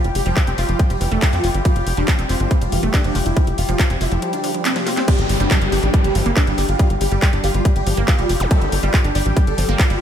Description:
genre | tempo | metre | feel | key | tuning
psychedelic trance | 140 BPM | 4/4 | straight | unclear | A4 = 440 Hz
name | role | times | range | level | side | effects
dense compressed supersaw | melody | 0.0-10.0 s | C4 to A4 | -26 LUFS | equal | phaser, cassette tape, sidechain pumping, diffuse ambient delay
bubbling stepped-filter texture | sustained chords | 0.0-10.0 s | G3 to G4 | -26 LUFS | left 1 dB | chorus, built-in reverb, sidechain pumping
wide unison pluck | riff | 0.0-10.0 s | E3 to G4 | -26 LUFS | right 2 dB | auto-pan, sidechain pumping, analog delay
tight sequencer bass | bass | 0.0-10.0 s | F1 to F2 | -20 LUFS | equal | none
drum and bass drum kit | drums | 0.0-10.0 s | crash cymbal, handclaps, hi-hat, snare drum | -25 LUFS | equal | overdrive, small room ambience
electronic kick drum | drums | 0.4-9.9 s | none | -15 LUFS | equal | overdrive, small room ambience
downlifter and zap | sound effects | 5.1-8.5 s | none | -27 LUFS | equal | none
room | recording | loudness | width
light reverb | none | -15 LUFS | side -9 dB against mid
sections
0.0-5.1 A section; 5.1-10.0 B section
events
drum fill 4.7-5.1; drop 5.1-10.0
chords
0.0 F5; 5.1 G5

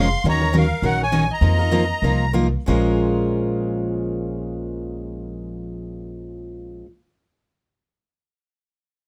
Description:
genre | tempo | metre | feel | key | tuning
acoustic string swing (jazz manouche) | 179-211 BPM | 4/4 | swing 59% on 8ths | Bb minor | A4 = 442 Hz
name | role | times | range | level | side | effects
musette accordion | melody | 0.0-2.3 s | F5 to C6 | -26 LUFS | equal | none
bright soprano saxophone | second line | 0.0-2.3 s | Bb4 to F5 | -31 LUFS | equal | none
picked steel-string acoustic guitar | accompaniment | 0.0-6.9 s | Bb2 to Bb4 | -27 LUFS | equal | none
picked swing-style acoustic guitar | accompaniment | 0.0-6.9 s | Bb2 to Bb4 | -29 LUFS | equal | none
upright bass | bass | 0.0-6.8 s | F1 to F2 | -26 LUFS | equal | none
room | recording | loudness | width
light reverb | close, detailed microphones | -20 LUFS | mono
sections
0.0-2.7 A section; 2.7-5.4 B section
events
slowing down 0.2-2.7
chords
0.2 Ebm9; 1.4 F7sus4; 2.7 Bbm7

